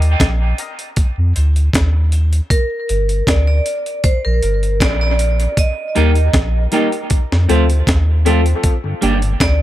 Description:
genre	dub reggae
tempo	78 BPM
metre	4/4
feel	straight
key	G minor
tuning	A4 = 439 Hz
part	mellow tonewheel organ	accompaniment	0.0-2.8, 8.8-9.3 s	G2 to G4	-21 LUFS	left 1 dB	chorus vibrato, stopped rotary speaker, high-pass filter
part	soft dub sub bass	bass	0.0-9.6 s	G1 to F2	-14 LUFS	equal	none
part	breakbeat sampler-style drum kit	drums	0.0-9.6 s	hi-hat, kick drum, snare drum	-17 LUFS	equal	overdrive
part	dark upright piano	stabs	0.6-8.4 s	C4 to Eb5	-23 LUFS	left 7 dB	high-pass filter, dub echo
part	vibraphone with hard mallets	melody	2.5-9.6 s	Bb4 to Eb5	-21 LUFS	right 1 dB	dub echo
part	semi-hollow electric guitar	accompaniment	6.0-9.2 s	F3 to G4	-21 LUFS	right 5 dB	high-pass filter, dub echo
room	little or no reverb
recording	none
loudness	-13 LUFS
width	side -14 dB against mid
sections	0.0-9.6 A section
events	break 0.0-5.6, 8.6-9.6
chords	0.0 Eb; 1.0 F; 2.5 Gm; 5.6 Eb; 7.1 F; 8.6 Gm

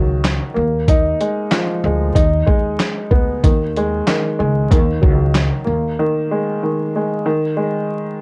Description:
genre	hip hop, boom-bap hip-hop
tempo	94 BPM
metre	4/4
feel	swing 63% on 16ths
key	Eb minor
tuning	A4 = 440 Hz
part	dark upright piano	accompaniment	0.0-8.2 s	Eb3 to Eb4	-21 LUFS	equal	cassette tape, high-pass filter, low-pass filter
part	upright bass	bass	0.0-5.9 s	Db2 to Eb2	-21 LUFS	equal	none
part	boom bap sampler-style drum kit	drums	0.2-5.5 s	handclaps, hi-hat, kick drum, snare drum	-18 LUFS	equal	none
room	little or no reverb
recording	worn, warbling old tape, cassette tape, vinyl crackle, warbly pitch drift, nothing above 10.6 kHz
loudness	-17 LUFS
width	mono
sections	0.0-8.2 A section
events	break 6.0-8.2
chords	0.0 Ebm; 0.6 Bb7/Eb; 2.2 B6/D#; 3.4 Ab5/Eb; 4.7 Ebm; 5.7 Ebsus4; 7.3 B6/D# (rootless)

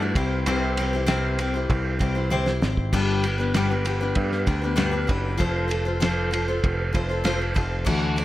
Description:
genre	folk rock and heartland rock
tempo	97 BPM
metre	4/4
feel	straight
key	unclear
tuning	A4 = 438 Hz
part	picked steel-string acoustic guitar	accompaniment	0.0-8.2 s	G2 to D5	-25 LUFS	left 3 dB	none
part	picked electric bass	bass	0.0-8.2 s	F1 to G2	-26 LUFS	right 1 dB	none
part	cloth-damped thuddy drum kit	drums	0.2-8.2 s	crash cymbal, kick drum, ride cymbal, snare drum, toms	-26 LUFS	right 1 dB	none
room	light reverb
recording	none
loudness	-21 LUFS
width	side -15 dB against mid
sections	0.0-8.2 A section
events	drum fill 2.3-2.9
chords	0.2 C; 2.9 G; 5.4 F

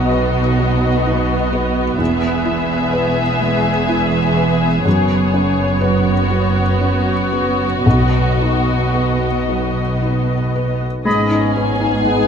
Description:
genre	cinematic, emotional film score for orchestra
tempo	55-65 BPM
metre	3/4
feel	rubato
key	B major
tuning	A4 = 444 Hz
part	muted studio violin section	melody	0.0-12.3 s	C#5 to G#5	-24 LUFS	left 5 dB	none
part	muted studio violin section	second line	0.0-12.3 s	F#4 to G#4	-23 LUFS	left 3 dB	none
part	felt-muted upright piano	accompaniment	0.0-12.3 s	B1 to B4	-20 LUFS	left 1 dB	none
part	muted studio viola section	accompaniment	0.0-12.3 s	B3 to C#4	-23 LUFS	right 2 dB	none
part	muted studio cello section	bass	0.0-12.3 s	E2 to B2	-22 LUFS	right 3 dB	none
part	muted studio double bass section	bass	0.0-12.3 s	E1 to B1	-21 LUFS	right 3 dB	none
part	clear clarinet	second line	11.0-11.4 s	G#4	-25 LUFS	left 6 dB	none
part	dark French horn section	sustained chords	11.0-12.3 s	B3 to D#4	-21 LUFS	left 3 dB	none
part	clear oboe	second line	11.1-11.4 s	D#5	-23 LUFS	equal	none
part	silver concert flute	second line	11.1-11.5 s	B5	-25 LUFS	equal	none
room	moderate scoring stage reverb, RT60 1.6 s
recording	none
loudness	-14 LUFS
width	side -7 dB against mid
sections	0.0-11.1 A section; 11.1-12.3 B section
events	none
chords	0.0 B; 2.0 E; 4.9 F#sus4; 7.9 B; 11.1 G#m

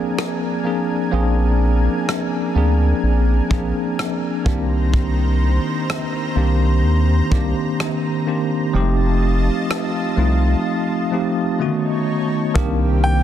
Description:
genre	contemporary R&B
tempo	63 BPM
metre	4/4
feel	swing 58% on 16ths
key	C minor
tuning	A4 = 439 Hz
part	bell-like tine electric piano	accompaniment	0.0-13.2 s	D3 to Ab4	-20 LUFS	equal	medium stereo tremolo
part	lush unison pad	sustained chords	0.0-13.2 s	C3 to Bb5	-27 LUFS	equal	chorus
part	soft brush drum kit	drums	0.2-12.8 s	hi-hat, kick drum, rim click	-23 LUFS	equal	soft clipping on snare
part	round analog bass	bass	1.1-13.2 s	F1 to Eb2	-17 LUFS	equal	none
part	bright baby grand piano	melody	13.0-13.2 s	G5	-19 LUFS	equal	none
room	studio ambience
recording	dense, heavily limited modern master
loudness	-16 LUFS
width	side -10 dB against mid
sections	0.0-12.6 A section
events	break 10.7-12.6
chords	0.0 Bb7; 4.5 Cm7; 8.7 F7; 11.6 B9; 12.6 Cm9

